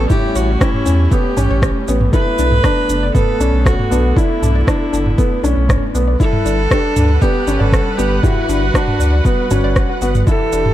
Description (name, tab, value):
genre	piano and strings electronica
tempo	118 BPM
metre	4/4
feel	straight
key	unclear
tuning	A4 = 440 Hz
part	rich viola	melody	0.0-10.7 s	E4 to B4	-21 LUFS	equal	shimmer reverb
part	rich studio string section	sustained chords	0.0-10.7 s	D3 to F#5	-24 LUFS	right 2 dB	shimmer reverb
part	analog pluck	arpeggios	0.0-10.6 s	C#4 to D5	-26 LUFS	left 4 dB	chorus, phaser, sidechain pumping, tape echo, shimmer reverb
part	felt-muted upright piano	riff	0.0-10.7 s	B3 to E4	-20 LUFS	equal	shimmer reverb
part	warm sub bass	bass	0.0-10.7 s	E1 to E2	-16 LUFS	equal	sidechain pumping
part	electronic kick drum	drums	0.1-10.4 s	none	-16 LUFS	equal	overdrive
part	minimal click drum kit	drums	0.1-10.7 s	rim click, shaker, toms	-21 LUFS	right 1 dB	none
room	digital ambience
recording	dark, warm production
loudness	-12 LUFS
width	side -13 dB against mid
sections	0.0-10.7 A section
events	none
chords	0.0 A7; 2.1 Bm7; 6.2 Gmaj7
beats	| 0.10 0.61 1.12 1.63 | 2.13 2.64 3.15 3.66 | 4.17 4.68 5.18 5.69 | 6.20 6.71 7.22 7.73 | 8.24 8.74 9.25 9.76 | 10.27